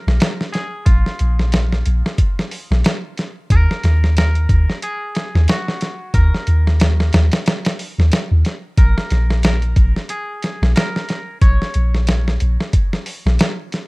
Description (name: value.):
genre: trip hop.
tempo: 91 BPM.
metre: 4/4.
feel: swing 57% on 16ths.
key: Bb minor.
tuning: A4 = 441 Hz.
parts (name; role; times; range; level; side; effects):
twangy electric guitar; melody; 0.0-12.7 s; F4 to Db5; -29 LUFS; equal; dub echo.
soft 808-style bass; bass; 0.1-13.4 s; Bb1 to Eb2; -14 LUFS; equal; none.
dusty soul sampler-style drum kit; drums; 0.1-13.9 s; hi-hat, kick drum, snare drum; -17 LUFS; equal; studio reverb.
room: digital ambience.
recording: rough home demo mix.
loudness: -14 LUFS.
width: side -26 dB against mid.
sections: 0.0-13.9 A section.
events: none.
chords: 0.0 Bb5; 3.5 Eb5; 8.8 Bbm.